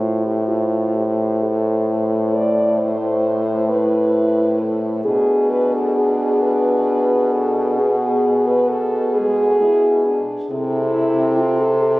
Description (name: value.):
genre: classical, lyrical piece for horn quartet.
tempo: 44 BPM (dotted quarters).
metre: 12/8.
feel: rubato.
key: A minor.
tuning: A4 = 439 Hz.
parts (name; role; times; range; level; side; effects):
mellow French horn; melody; 0.0-12.0 s; G#4 to C5; -22 LUFS; left 2 dB; none.
dark French horn; second line; 0.0-12.0 s; E4 to D5; -20 LUFS; right 1 dB; none.
clear French horn; bass; 0.0-12.0 s; A2 to C3; -21 LUFS; equal; none.
mellow French horn; accompaniment; 2.4-12.0 s; G#3 to E4; -26 LUFS; left 1 dB; none.
room: moderate cathedral reverb, RT60 4.6 s.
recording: recorded on a phone in the room, club reverb, compression.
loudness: -16 LUFS.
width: side -19 dB against mid.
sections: 0.0-12.0 A section.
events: none.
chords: 0.0 Am; 5.0 Bm6; 10.5 Am/C.